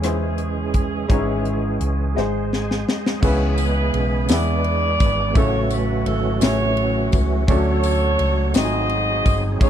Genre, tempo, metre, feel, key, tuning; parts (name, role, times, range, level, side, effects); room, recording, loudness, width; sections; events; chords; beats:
slow gospel; 56 BPM (dotted quarters); 6/8; straight; C# harmonic minor, C# minor from 3.2 s; A4 = 438 Hz
dark saxophone section; melody; 0.0-9.7 s; C#4 to D#5; -24 LUFS; right 1 dB
bright baby grand piano; accompaniment; 0.0-9.7 s; G#2 to D#5; -26 LUFS; left 2 dB
bright tonewheel organ; sustained chords; 0.0-9.7 s; E3 to G#5; -25 LUFS; right 3 dB; fast rotary speaker, chorus vibrato
hollow-body short-scale fingered electric bass; bass; 0.0-9.7 s; G1 to E2; -22 LUFS; equal
tight funk drum kit; drums; 0.0-9.7 s; crash cymbal, hi-hat, kick drum, ride cymbal, rim click, snare drum; -20 LUFS; left 1 dB
tambourine; percussion; 3.2-9.7 s; -36 LUFS; left 8 dB
little or no reverb; dark, warm production; -17 LUFS; side -10 dB against mid
0.0-3.2 A section; 3.2-9.7 B section
drum fill 2.2-3.2; tonewheel organ fill 2.2-3.2
0.0 C#m; 1.1 C#m/G#; 2.2 G#; 3.2 C#m7; 4.3 E7; 5.4 A6; 7.5 Dmaj7; 8.5 G#7b9
0.03 | 1.10 2.17 | 3.23 4.30 | 5.36 6.42 | 7.49 8.55 | 9.61